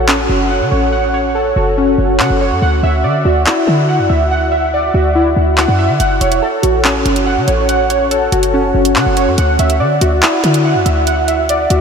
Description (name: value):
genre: hip hop, drill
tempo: 142 BPM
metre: 4/4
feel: half-time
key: F# minor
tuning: A4 = 441 Hz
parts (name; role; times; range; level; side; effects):
- warbly lo-fi synth keys; arpeggios; 0.0-11.8 s; C#4 to F#5; -13 LUFS; equal; chorus, ping-pong delay
- short 808-style bass; bass; 0.0-11.8 s; E1 to D3; -16 LUFS; equal; none
- drill drum kit; drums; 0.1-11.8 s; handclaps, hi-hat; -19 LUFS; equal; none
room: wet huge ambient reverb, RT60 4.8 s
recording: dreamy mix soaked in reverb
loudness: -11 LUFS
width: side -6 dB against mid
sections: 0.0-11.8 A section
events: break 0.0-6.0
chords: 0.0 F#m; 2.6 Dadd9; 6.0 F#m; 9.4 Dadd9